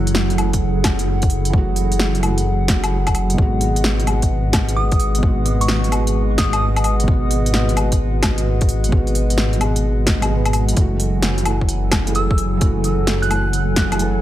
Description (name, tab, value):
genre	future garage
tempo	130 BPM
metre	4/4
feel	swing 66% on 16ths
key	F# dorian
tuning	A4 = 440 Hz
part	felt-muted upright piano	accompaniment	0.0-14.2 s	B2 to B4	-25 LUFS	right 2 dB	vintage 12-bit sampler grit, sidechain pumping, analog delay
part	warbly tape-like pad	sustained chords	0.0-14.2 s	F#3 to G#5	-24 LUFS	equal	chorus, built-in reverb, sidechain pumping
part	dark detuned saw bass	bass	0.0-14.2 s	F#1 to G#1	-19 LUFS	equal	sidechain pumping
part	garage drum kit	drums	0.1-14.1 s	hi-hat, snare drum, woodblock	-22 LUFS	left 1 dB	none
part	electronic kick drum	drums	0.5-13.9 s	none	-18 LUFS	equal	none
part	glassy synth bell	melody	4.8-7.0, 12.2-13.9 s	C#6 to F#6	-26 LUFS	right 1 dB	chorus, vintage 12-bit sampler grit, analog delay
room	little or no reverb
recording	none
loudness	-15 LUFS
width	side -13 dB against mid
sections	0.0-10.8 A section; 10.8-14.2 A section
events	kick drops out 10.3-10.8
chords	0.0 F#m7; 3.4 G#m7; 10.8 F#m7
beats	0.15 0.61 1.07 | 1.53 2.00 2.46 2.92 | 3.38 3.84 4.30 4.77 | 5.23 5.69 6.15 6.61 | 7.07 7.54 8.00 8.46 | 8.92 9.38 9.84 10.30 | 10.77 11.23 11.69 12.15 | 12.61 13.07 13.54 14.00